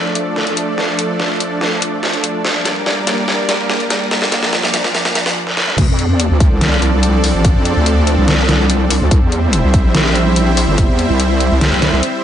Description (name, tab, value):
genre	heavy wobble dubstep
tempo	144 BPM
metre	4/4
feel	half-time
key	D minor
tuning	A4 = 440 Hz
part	supersaw pad	sustained chords	0.0-12.2 s	F3 to E5	-18 LUFS	right 1 dB	sidechain pumping
part	dubstep drum kit	drums	0.2-12.1 s	crash cymbal, hi-hat, snare drum, toms	-16 LUFS	equal	high-pass filter on hats, high-pass filter on snare, high-pass filter on toms, high-pass filter on cymbals, high-pass filter on room
part	wobble bass	bass	5.8-12.0 s	G1 to F2	-14 LUFS	equal	chorus, overdrive
part	electronic kick drum	drums	5.8-10.9 s	none	-13 LUFS	equal	none
room	light reverb, digital ambience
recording	nothing above 10.3 kHz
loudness	-12 LUFS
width	side -10 dB against mid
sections	0.0-5.8 A section; 5.8-12.2 B section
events	build-up 0.0-5.8; drum fill 0.0-5.4, 5.5-5.8; drop 5.8-12.2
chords	0.0 Dm; 2.4 Gm; 4.1 Bb; 5.8 Dm7; 9.1 C